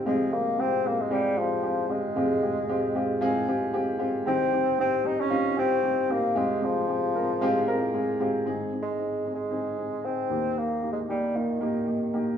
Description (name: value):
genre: pop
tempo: 114 BPM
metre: 4/4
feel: swing 56% on 16ths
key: unclear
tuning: A4 = 440 Hz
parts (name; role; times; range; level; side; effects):
- dark upright piano; accompaniment; 0.0-12.4 s; F1 to Bb4; -26 LUFS; equal; none
- warm bassoon; melody; 0.1-12.4 s; Eb3 to Eb4; -27 LUFS; equal; none
room: wet stone room reverb, RT60 1.4 s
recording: band playing live in one room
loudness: -24 LUFS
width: side -8 dB against mid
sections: 0.0-8.5 A section; 8.5-12.4 B section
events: none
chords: 0.1 Fmadd9; 4.3 Cm; 6.4 Fmadd9; 8.5 Ab; 10.3 Eb